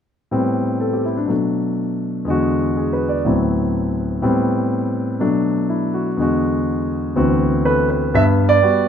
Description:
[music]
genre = solo jazz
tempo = 123 BPM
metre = 4/4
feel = swing 69% on 8ths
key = unclear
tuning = A4 = 440 Hz
[part]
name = warm concert grand piano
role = solo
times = 0.3-8.9 s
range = D2 to E5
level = -16 LUFS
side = equal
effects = none
[sound]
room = moderate large studio reverb, RT60 1.2 s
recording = minimal, uncompressed stereo recording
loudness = -16 LUFS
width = side -8 dB against mid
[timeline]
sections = 0.3-8.1 A section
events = none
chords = 0.3 Am9; 1.3 Bm7; 2.3 E9; 3.2 D13; 4.2 Am9; 5.2 Bm7; 6.2 E9; 7.2 D13; 8.1 Gmaj7

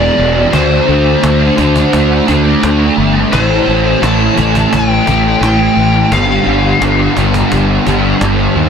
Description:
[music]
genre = rock, shoegaze and dream pop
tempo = 86 BPM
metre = 4/4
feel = straight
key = A minor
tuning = A4 = 439 Hz
[part]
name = lead guitar through a small cranked amp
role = melody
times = 0.0-8.2 s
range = C5 to A5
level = -16 LUFS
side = left 4 dB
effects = overdrive, tape echo
[part]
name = fuzz guitar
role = riff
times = 0.0-8.7 s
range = E2 to D4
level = -12 LUFS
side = right 1 dB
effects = distortion, ensemble chorus
[part]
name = fuzz fingered electric bass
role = bass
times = 0.0-8.7 s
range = E1 to D#2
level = -14 LUFS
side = equal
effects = overdrive
[part]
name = cajon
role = drums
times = 0.5-8.4 s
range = none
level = -19 LUFS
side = equal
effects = none
[sound]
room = little or no reverb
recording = dense, heavily limited modern master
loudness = -9 LUFS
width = side -7 dB against mid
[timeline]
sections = 0.0-8.7 A section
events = none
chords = 0.0 E7(no3); 0.5 D5; 3.3 Am7; 6.1 G5

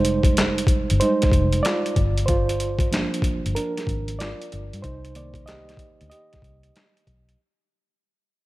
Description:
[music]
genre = R&B, neo-soul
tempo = 94 BPM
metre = 4/4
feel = swing 64% on 16ths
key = unclear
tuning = A4 = 440 Hz
[part]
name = reed electric piano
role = accompaniment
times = 0.0-7.4 s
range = Eb3 to Eb5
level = -24 LUFS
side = right 2 dB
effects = fast tremolo
[part]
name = vintage muted fingered electric bass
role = bass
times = 0.0-7.3 s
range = F1 to G2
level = -25 LUFS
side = left 1 dB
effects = none
[part]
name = boom bap sampler-style drum kit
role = drums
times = 0.0-7.4 s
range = handclaps, hi-hat, kick drum, snare drum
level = -22 LUFS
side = left 1 dB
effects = none
[sound]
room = light reverb, digital ambience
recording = none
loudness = -19 LUFS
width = side -18 dB against mid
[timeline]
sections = 0.0-7.4 A section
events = fade-out 0.0-7.4; reed electric piano solo 0.0-7.4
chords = 0.0 Fm9; 2.0 Gm7; 4.8 Cm7

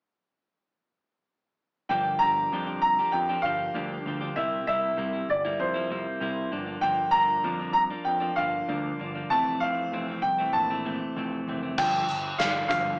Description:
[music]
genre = indie rock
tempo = 97 BPM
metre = 4/4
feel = straight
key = G dorian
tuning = A4 = 440 Hz
[part]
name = bright upright piano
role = melody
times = 1.9-13.0 s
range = C5 to Bb5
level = -28 LUFS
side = equal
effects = none
[part]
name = clean electric guitar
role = riff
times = 1.9-13.0 s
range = F2 to G4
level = -35 LUFS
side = equal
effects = none
[part]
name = growling fingered electric bass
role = bass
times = 1.9-12.9 s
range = F1 to F2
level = -40 LUFS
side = equal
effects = overdrive
[part]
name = big rock drum kit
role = drums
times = 11.8-12.9 s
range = crash cymbal, hi-hat, kick drum, snare drum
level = -32 LUFS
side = equal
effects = none
[sound]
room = moderate large studio reverb, RT60 0.8 s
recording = band playing live in one room, small speaker sound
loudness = -27 LUFS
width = mono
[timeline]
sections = 1.9-11.8 A section; 11.8-13.0 B section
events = none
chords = 1.9 Gm7; 4.4 C7; 6.5 Gm7; 9.3 Fmaj7; 11.8 G5

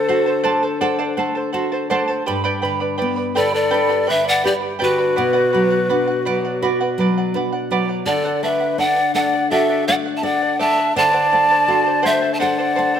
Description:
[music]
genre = andean folk, Andean ensemble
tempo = 83 BPM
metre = 4/4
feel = straight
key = unclear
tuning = A4 = 440 Hz
[part]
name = breathy mellow pan flute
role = melody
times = 0.0-13.0 s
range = B4 to A5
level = -19 LUFS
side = right 1 dB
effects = none
[part]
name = large quena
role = second line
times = 0.0-13.0 s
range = F#4 to E5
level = -21 LUFS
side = left 5 dB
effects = none
[part]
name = charango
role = accompaniment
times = 0.0-13.0 s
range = G4 to B5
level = -22 LUFS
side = right 3 dB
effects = none
[part]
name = nylon-string guitar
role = accompaniment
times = 0.0-13.0 s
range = G2 to A4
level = -23 LUFS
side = left 2 dB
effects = none
[sound]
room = moderate scoring stage reverb, RT60 1.5 s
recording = none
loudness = -16 LUFS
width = side -8 dB against mid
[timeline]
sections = 0.0-13.0 A section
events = none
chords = 0.0 D7; 2.3 G; 5.2 Bm; 8.1 D; 11.0 D7

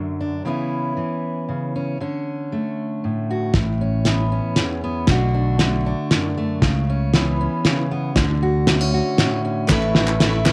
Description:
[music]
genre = indie folk with a building arrangement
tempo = 117 BPM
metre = 3/4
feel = straight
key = A major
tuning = A4 = 440 Hz
[part]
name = fingerpicked steel-string acoustic guitar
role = accompaniment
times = 0.0-10.5 s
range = E2 to F#4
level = -24 LUFS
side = equal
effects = cassette tape
[part]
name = fingered electric bass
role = bass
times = 3.5-10.5 s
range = A1 to D2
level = -24 LUFS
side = equal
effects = none
[part]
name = cloth-damped thuddy drum kit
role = drums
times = 3.5-10.5 s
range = hi-hat, kick drum, snare drum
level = -21 LUFS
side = equal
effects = cassette tape
[part]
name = picked steel-string acoustic guitar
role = accompaniment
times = 9.7-10.5 s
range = A3 to B4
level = -26 LUFS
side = equal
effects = cassette tape
[part]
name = mellow tonewheel organ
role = sustained chords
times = 9.7-10.5 s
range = A4 to C#6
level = -30 LUFS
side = equal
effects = slow rotary speaker, cassette tape
[part]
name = group handclap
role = percussion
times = 9.7-10.5 s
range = none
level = -29 LUFS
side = equal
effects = none
[sound]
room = little or no reverb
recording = home recording on cassette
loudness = -21 LUFS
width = mono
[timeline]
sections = 0.0-3.5 A section; 3.5-10.5 B section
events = build-up 3.5-10.5; drum fill 3.5-10.5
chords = 0.4 C#m7; 2.0 Dmaj7; 3.5 Aadd9; 5.1 Bm7; 6.6 C#m7; 8.2 Dmaj7; 9.7 Aadd9

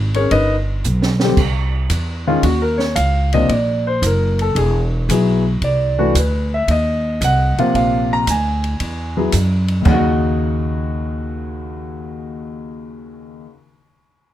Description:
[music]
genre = jazz piano trio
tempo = 113 BPM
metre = 4/4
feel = swing 68% on 8ths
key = Eb dorian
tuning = A4 = 440 Hz
[part]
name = upright bass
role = bass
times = 0.0-13.4 s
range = E1 to Gb2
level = -18 LUFS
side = right 1 dB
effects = none
[part]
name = warm grand piano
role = melody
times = 0.1-13.5 s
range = Eb2 to Bb5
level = -19 LUFS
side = left 2 dB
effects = none
[part]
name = open jazz drum kit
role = drums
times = 0.1-10.0 s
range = china cymbal, crash cymbal, hi-hat, kick drum, ride cymbal, snare drum, toms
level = -24 LUFS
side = right 2 dB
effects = none
[sound]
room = little or no reverb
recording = none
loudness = -15 LUFS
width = side -12 dB against mid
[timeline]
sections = 0.0-1.4 A section; 1.4-9.9 B section; 9.9-14.1 C section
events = drum fill 0.8-1.4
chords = 0.3 G; 1.4 C; 2.4 Ebsus2; 3.5 Gbaug; 4.6 E; 5.6 Cadd9; 6.7 Ebmadd9; 7.7 Bb7; 8.8 E; 9.9 Ebm7

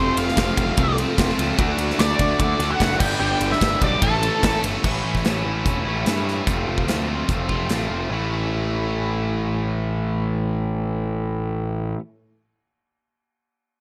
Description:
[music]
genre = classic rock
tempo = 147 BPM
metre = 4/4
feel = straight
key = A mixolydian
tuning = A4 = 441 Hz
[part]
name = octave-fuzz lead guitar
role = melody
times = 0.0-4.6 s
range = A4 to G5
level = -26 LUFS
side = equal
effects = wah, distortion, slapback echo
[part]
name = tonewheel organ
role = sustained chords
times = 0.0-4.8 s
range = C4 to B4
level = -33 LUFS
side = equal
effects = none
[part]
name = cranked stack guitar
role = riff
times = 0.0-12.0 s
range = F2 to A4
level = -27 LUFS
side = equal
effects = overdrive
[part]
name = fuzz picked electric bass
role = bass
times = 0.0-11.9 s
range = E1 to G2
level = -28 LUFS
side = equal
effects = overdrive
[part]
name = big rock drum kit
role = drums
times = 0.2-7.8 s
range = crash cymbal, hi-hat, kick drum, ride cymbal, snare drum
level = -26 LUFS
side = equal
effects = none
[sound]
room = light reverb, small room ambience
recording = none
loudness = -22 LUFS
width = mono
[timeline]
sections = 0.0-4.8 A section; 4.8-8.1 B section; 8.1-11.4 C section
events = none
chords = 0.0 F; 1.6 D; 3.0 G; 4.0 A; 6.5 F; 8.1 A

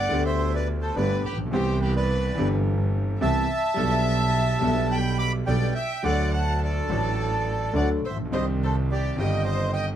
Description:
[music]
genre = tango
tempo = 106 BPM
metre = 4/4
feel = rubato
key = G major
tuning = A4 = 440 Hz
[part]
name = bandoneon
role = melody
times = 0.0-9.9 s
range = G4 to D6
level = -27 LUFS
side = right 2 dB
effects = none
[part]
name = warm violin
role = second line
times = 0.0-9.9 s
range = G4 to B5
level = -34 LUFS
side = left 4 dB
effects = none
[part]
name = warm concert grand piano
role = accompaniment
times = 0.0-10.0 s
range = G1 to A4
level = -27 LUFS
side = left 1 dB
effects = none
[part]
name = rich double bass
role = bass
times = 0.0-10.0 s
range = G1 to D2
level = -26 LUFS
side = right 1 dB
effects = none
[sound]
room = little or no reverb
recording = close, detailed microphones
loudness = -22 LUFS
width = side -10 dB against mid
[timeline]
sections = 0.0-10.0 A section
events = none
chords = 0.0 Gadd9; 1.5 Cmaj7; 3.8 Gadd9/B; 6.0 D; 8.3 Cmadd9

